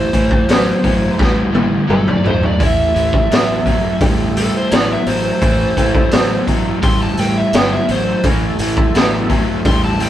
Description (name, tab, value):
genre	blues rock power trio and southern rock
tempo	85 BPM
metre	4/4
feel	straight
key	A minor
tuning	A4 = 440 Hz
part	overdriven slide guitar	melody	0.0-10.1 s	A4 to C6	-20 LUFS	equal	none
part	overdriven semi-hollow guitar	riff	0.0-10.1 s	A2 to G3	-18 LUFS	equal	none
part	fuzz fingered electric bass	bass	0.1-10.1 s	G1 to A1	-22 LUFS	equal	overdrive
part	raw garage drum kit	drums	0.1-10.1 s	hi-hat, kick drum, snare drum, toms	-16 LUFS	equal	none
part	overdriven tonewheel organ	sustained chords	2.6-10.1 s	A3 to Bb4	-29 LUFS	right 2 dB	slow rotary speaker, chorus vibrato
room	moderate stone room reverb, RT60 1.0 s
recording	band playing live in one room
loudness	-12 LUFS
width	side -12 dB against mid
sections	0.0-10.1 A section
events	electric slide guitar solo 0.0-10.1; drum fill 1.2-2.6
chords	0.0 Am